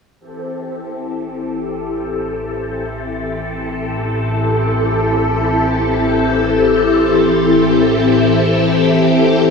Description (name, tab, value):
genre	ambient, sequencer-driven space music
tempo	free time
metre	none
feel	none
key	A minor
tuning	A4 = 439 Hz
part	phased string machine	sustained chords	0.2-9.5 s	E3 to A4	-14 LUFS	left 2 dB	ensemble chorus, phaser
part	fat analog bass	bass	0.2-9.5 s	A1	-24 LUFS	equal	none
room	wet concert hall reverb, RT60 2.4 s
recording	small room ambience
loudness	-13 LUFS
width	side -5 dB against mid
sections	0.2-9.5 A section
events	fade-in on string machine 0.2-9.5; fade-in on analog synth bass 0.2-9.5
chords	0.2 Am7